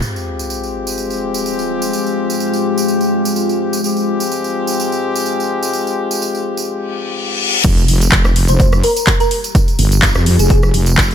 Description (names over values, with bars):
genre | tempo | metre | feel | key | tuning
bass house | 126 BPM | 4/4 | swing 54% on 16ths | F minor | A4 = 440 Hz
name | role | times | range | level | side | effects
deep dark ambient pad | sustained chords | 1.1-11.1 s | Ab3 to G4 | -21 LUFS | left 2 dB | chorus, built-in reverb, sidechain pumping
warm horn section | stabs | 0.0-7.6 s | Ab3 to G4 | -19 LUFS | left 3 dB | sidechain pumping, dub echo
tambourine | percussion | 0.0-11.1 s | none | -24 LUFS | right 4 dB | none
sub drop, reverse cymbal and impact | sound effects | 0.0-1.9, 6.9-9.6 s | none | -21 LUFS | left 3 dB | none
wobble bass | bass | 7.6-11.1 s | F1 to F2 | -13 LUFS | equal | chorus, tube saturation, sidechain pumping
electronic kick drum | drums | 7.6-11.1 s | none | -14 LUFS | equal | studio ambience
house drum kit | drums | 7.6-11.1 s | crash cymbal, handclaps, hi-hat, rim click | -18 LUFS | equal | studio ambience
thumb-piano-like synth pluck | melody | 8.5-10.6 s | Ab4 to C5 | -19 LUFS | equal | ensemble chorus, dub echo
room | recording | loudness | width
light reverb | none | -13 LUFS | side -8 dB against mid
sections
0.0-7.6 A section; 7.6-11.1 B section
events
impact 0.0-1.9, 7.6-9.6; reverse cymbal 6.9-7.6; drop 7.6-11.1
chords
0.0 Fmadd9